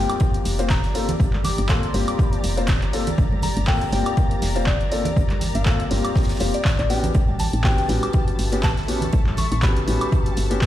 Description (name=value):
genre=deep house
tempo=121 BPM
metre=4/4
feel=swing 56% on 16ths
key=G minor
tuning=A4 = 440 Hz
part: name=soft synth bell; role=melody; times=0.0-10.3 s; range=D5 to D6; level=-30 LUFS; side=left 2 dB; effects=chorus, vintage 12-bit sampler grit, digital delay
part: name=felt-muted upright piano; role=stabs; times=0.0-10.6 s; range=Bb3 to C5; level=-26 LUFS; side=left 3 dB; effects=vintage 12-bit sampler grit, digital delay
part: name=woody FM bass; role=bass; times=0.0-10.7 s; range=F1 to A1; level=-24 LUFS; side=equal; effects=sidechain pumping
part: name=analog string pad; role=texture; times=0.0-10.7 s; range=A5 to A6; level=-38 LUFS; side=left 2 dB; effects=ensemble chorus, sidechain pumping
part: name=granular cloud pad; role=texture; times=0.0-10.7 s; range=D4 to C#6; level=-33 LUFS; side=left 1 dB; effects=built-in reverb, sidechain pumping
part: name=punchy analog drum machine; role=drums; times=0.1-10.7 s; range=handclaps, hi-hat, woodblock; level=-29 LUFS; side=right 1 dB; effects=none
part: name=electronic kick drum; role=drums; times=0.2-10.7 s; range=none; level=-20 LUFS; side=equal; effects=none
part: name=modern studio drum kit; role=drums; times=0.2-10.7 s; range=hi-hat, snare drum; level=-39 LUFS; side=right 3 dB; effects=sidechain pumping on hats, high-pass filter on hats, high-pass filter on snare, high-pass filter on room
part: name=congas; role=percussion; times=1.1-10.0 s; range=none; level=-30 LUFS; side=right 4 dB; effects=none
room=small room ambience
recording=played on a big sound system in a bare room, stone room reverb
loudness=-18 LUFS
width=side -13 dB against mid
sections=0.0-10.7 A section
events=none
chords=0.0 Gm11; 6.9 A13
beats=0.21 0.70 | 1.20 1.69 2.19 2.69 | 3.18 3.68 4.17 4.67 | 5.17 5.66 6.16 6.65 | 7.15 7.64 8.14 8.64 | 9.13 9.63 10.12 10.62